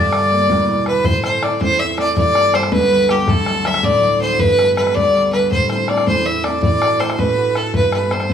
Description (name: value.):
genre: celtic folk, Celtic jig.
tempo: 108 BPM (dotted quarters).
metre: 6/8.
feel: straight.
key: A dorian.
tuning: A4 = 440 Hz.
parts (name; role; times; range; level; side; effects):
clear fiddle; melody; 0.0-8.3 s; G4 to E5; -15 LUFS; equal; none.
mandolin; second line; 0.0-0.8 s; D5; -25 LUFS; left 6 dB; none.
concert harp; accompaniment; 0.0-8.3 s; E1 to F#4; -20 LUFS; equal; none.
bodhran; percussion; 0.1-8.3 s; none; -21 LUFS; left 1 dB; none.
room: wet stone room reverb, RT60 1.0 s.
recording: band playing live in one room, small room ambience.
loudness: -13 LUFS.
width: side -8 dB against mid.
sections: 0.0-1.1 A section; 1.1-8.3 B section.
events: none.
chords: 0.5 E5; 1.1 Am; 2.2 G; 3.3 D; 4.4 G; 5.5 Am; 6.6 D/A; 7.7 G.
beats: 0.49 | 1.05 1.61 | 2.17 2.73 | 3.28 3.84 | 4.40 4.96 | 5.51 6.07 | 6.63 7.18 | 7.74 8.30.